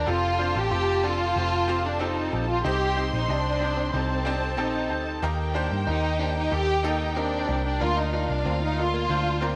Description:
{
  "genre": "piano-driven pop",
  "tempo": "93 BPM",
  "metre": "4/4",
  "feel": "straight",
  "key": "F mixolydian",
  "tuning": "A4 = 441 Hz",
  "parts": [
    { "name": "dark studio violin section", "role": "melody", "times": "0.0-9.6 s", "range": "C4 to G4", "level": "-29 LUFS", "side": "equal", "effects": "none" },
    { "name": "warm studio violin section", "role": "second line", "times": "0.0-9.6 s", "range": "F4 to C6", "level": "-36 LUFS", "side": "equal", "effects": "tape echo" },
    { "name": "bright upright piano", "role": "accompaniment", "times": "0.0-9.6 s", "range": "C3 to Eb5", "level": "-33 LUFS", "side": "equal", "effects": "none" },
    { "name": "vintage muted picked electric bass", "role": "bass", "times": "0.0-9.6 s", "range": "F1 to G2", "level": "-31 LUFS", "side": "equal", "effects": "none" },
    { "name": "direct-recorded clean electric guitar", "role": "riff", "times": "0.4-9.6 s", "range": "Bb3 to F4", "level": "-38 LUFS", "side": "equal", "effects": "none" }
  ],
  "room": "moderate echo chamber reverb, RT60 1.8 s, small room ambience",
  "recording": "none",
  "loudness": "-25 LUFS",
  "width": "mono",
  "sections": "0.0-9.6 A section",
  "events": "none",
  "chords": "0.1 Fadd9; 2.6 Cm; 5.2 Eb; 7.8 Bb"
}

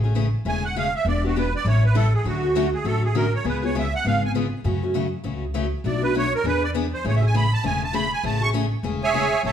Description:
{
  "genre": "acoustic string swing (jazz manouche)",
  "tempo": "200 BPM",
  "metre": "4/4",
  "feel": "swing 59% on 8ths",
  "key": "A major",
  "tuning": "A4 = 439 Hz",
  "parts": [
    { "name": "picked steel-string acoustic guitar", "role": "accompaniment", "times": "0.0-9.5 s", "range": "B2 to A4", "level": "-25 LUFS", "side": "left 3 dB", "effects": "none" },
    { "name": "upright bass", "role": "bass", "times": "0.0-9.5 s", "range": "E1 to F#2", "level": "-24 LUFS", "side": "equal", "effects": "none" },
    { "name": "musette accordion", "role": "melody", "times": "0.5-9.5 s", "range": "F#4 to C#6", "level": "-24 LUFS", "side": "right 4 dB", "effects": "plate reverb" }
  ],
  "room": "wet studio reverb, RT60 0.9 s",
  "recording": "heard from further back in the room",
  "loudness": "-20 LUFS",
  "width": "side -9 dB against mid",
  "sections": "0.0-9.4 A section",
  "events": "accordion solo 0.0-9.5",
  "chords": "0.0 Amaj7; 1.1 Em7; 1.7 A7; 2.3 Dmaj7; 3.5 C#7; 4.6 F#m7; 5.8 Bm7; 6.4 E7; 7.0 Amaj7"
}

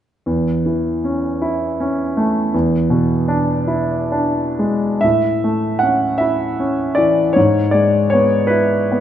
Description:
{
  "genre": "classical, romantic nocturne for solo piano",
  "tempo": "41-55 BPM (dotted quarters)",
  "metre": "6/8",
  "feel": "rubato",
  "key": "A major",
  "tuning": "A4 = 439 Hz",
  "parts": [
    { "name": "clear grand piano", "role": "solo", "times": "0.3-9.0 s", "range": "E2 to F#5", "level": "-14 LUFS", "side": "equal", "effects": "none" }
  ],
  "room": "moderate recital hall reverb, RT60 1.4 s",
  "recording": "nothing above 11.0 kHz",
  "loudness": "-15 LUFS",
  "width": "side -10 dB against mid",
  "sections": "0.3-5.0 A section; 5.0-9.0 B section",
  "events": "none",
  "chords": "0.3 A/E; 2.5 E7; 5.0 A; 7.4 E/G#"
}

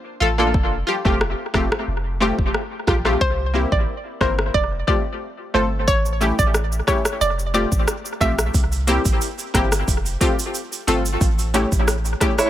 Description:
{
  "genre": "dancehall",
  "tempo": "90 BPM",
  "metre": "4/4",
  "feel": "straight",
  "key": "unclear",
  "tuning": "A4 = 441 Hz",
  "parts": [
    { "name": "punchy chord stab", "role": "accompaniment", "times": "0.2-12.4 s", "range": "A3 to Bb4", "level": "-22 LUFS", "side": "left 1 dB", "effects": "chorus, sidechain pumping, tape echo" },
    { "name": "punchy sub bass", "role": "bass", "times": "0.2-12.1 s", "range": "E1 to C2", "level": "-23 LUFS", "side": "equal", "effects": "none" },
    { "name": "afro-pop drum kit", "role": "drums", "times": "0.5-12.5 s", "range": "hi-hat, kick drum, rim click, shaker", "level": "-21 LUFS", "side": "equal", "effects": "tape echo" },
    { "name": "hollow square pluck", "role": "melody", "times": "3.2-8.4 s", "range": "C5 to E5", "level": "-23 LUFS", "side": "equal", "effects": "chorus, tape echo" },
    { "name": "tube shaker and timbales", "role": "percussion", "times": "8.5-12.5 s", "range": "none", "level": "-30 LUFS", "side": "right 8 dB", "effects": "tape echo" },
    { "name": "clean electric guitar", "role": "arpeggios", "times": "12.4-12.5 s", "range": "E4 to C#5", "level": "-16 LUFS", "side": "right 2 dB", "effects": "tremolo" }
  ],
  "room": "little or no reverb",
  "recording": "echo-heavy mix",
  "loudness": "-18 LUFS",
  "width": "side -12 dB against mid",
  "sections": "0.0-3.2 A section; 3.2-12.5 B section",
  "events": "none",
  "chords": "0.0 Bbmaj7; 0.5 Fadd9; 3.2 C7; 4.5 Fadd9; 5.9 A7; 7.2 Fadd9; 8.5 C7; 9.9 Fadd9; 11.2 A7"
}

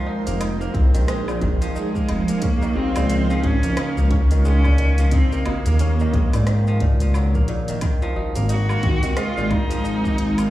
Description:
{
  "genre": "organic downtempo",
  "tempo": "89 BPM",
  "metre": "4/4",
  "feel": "swing 60% on 16ths",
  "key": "unclear",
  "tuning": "A4 = 443 Hz",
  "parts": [
    { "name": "ethereal airy pad", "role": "sustained chords", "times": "0.0-10.5 s", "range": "Db3 to Ab5", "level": "-28 LUFS", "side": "right 2 dB", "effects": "ensemble chorus, built-in reverb, phaser, sidechain pumping" },
    { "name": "kora", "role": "arpeggios", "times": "0.0-10.5 s", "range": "Bb2 to Eb4", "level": "-28 LUFS", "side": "right 1 dB", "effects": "tape echo" },
    { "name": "smooth synth bass", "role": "bass", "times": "0.3-10.5 s", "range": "Eb1 to Ab2", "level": "-19 LUFS", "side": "equal", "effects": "none" },
    { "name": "afro-pop drum kit", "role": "drums", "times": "0.3-10.5 s", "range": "hi-hat, rim click, shaker, woodblock", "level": "-34 LUFS", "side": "equal", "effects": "none" },
    { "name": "electronic kick drum", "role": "drums", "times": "0.7-10.2 s", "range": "none", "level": "-21 LUFS", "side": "equal", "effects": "none" },
    { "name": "djembe", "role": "percussion", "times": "0.7-9.7 s", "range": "none", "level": "-29 LUFS", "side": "left 2 dB", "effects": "none" },
    { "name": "rich cello", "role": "melody", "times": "1.7-10.5 s", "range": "Ab3 to Gb4", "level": "-25 LUFS", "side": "equal", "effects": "tape echo" }
  ],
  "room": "light reverb, studio reverb",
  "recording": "played on a big sound system in a bare room, large studio reverb, small room ambience",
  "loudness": "-17 LUFS",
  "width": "side -15 dB against mid",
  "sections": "0.0-10.5 A section",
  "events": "none",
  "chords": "0.0 Fm7; 2.4 Dbmaj7; 5.1 Ebm7; 7.8 Ab9"
}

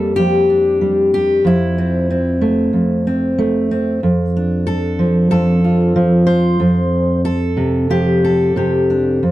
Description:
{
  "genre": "folk, solo fingerstyle acoustic guitar",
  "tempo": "93 BPM",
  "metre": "4/4",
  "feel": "straight",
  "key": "unclear",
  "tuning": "A4 = 440 Hz",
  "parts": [
    { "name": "fingerpicked steel-string acoustic guitar", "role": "solo", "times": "0.0-9.3 s", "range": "F2 to C5", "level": "-13 LUFS", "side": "equal", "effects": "none" }
  ],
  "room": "light reverb",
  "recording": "dry, close 1970s-style studio recording",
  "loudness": "-13 LUFS",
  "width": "side -15 dB against mid",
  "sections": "0.0-9.3 A section",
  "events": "none",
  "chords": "0.0 Gm/F; 1.4 Am/F; 4.0 Dm/F; 6.6 Csus2/F"
}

